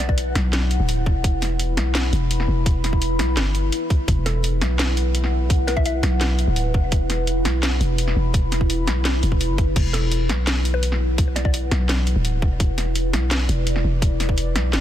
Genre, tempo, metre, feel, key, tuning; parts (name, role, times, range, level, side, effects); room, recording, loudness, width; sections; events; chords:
half-time drum and bass; 169 BPM; 4/4; half-time; A4 = 440 Hz
mallet-like synth pluck; melody; 0.0-0.1, 4.3-5.9, 9.9-11.5 s; A4 to E5; -33 LUFS; left 2 dB; chorus, phaser, ping-pong delay
deep dark ambient pad; sustained chords; 0.0-14.8 s; E4 to B5; -26 LUFS; equal; chorus, built-in reverb, vintage 12-bit sampler grit, sidechain pumping
growling 808-style bass; bass; 0.0-14.8 s; D1 to B1; -21 LUFS; equal
drum and bass drum kit; drums; 0.0-14.8 s; crash cymbal, hi-hat, snare drum; -26 LUFS; equal
electronic kick drum; drums; 0.1-14.4 s; -19 LUFS; equal
digital ambience; dense, heavily limited modern master; -18 LUFS; side -11 dB against mid
0.0-14.8 A section
0.0 E5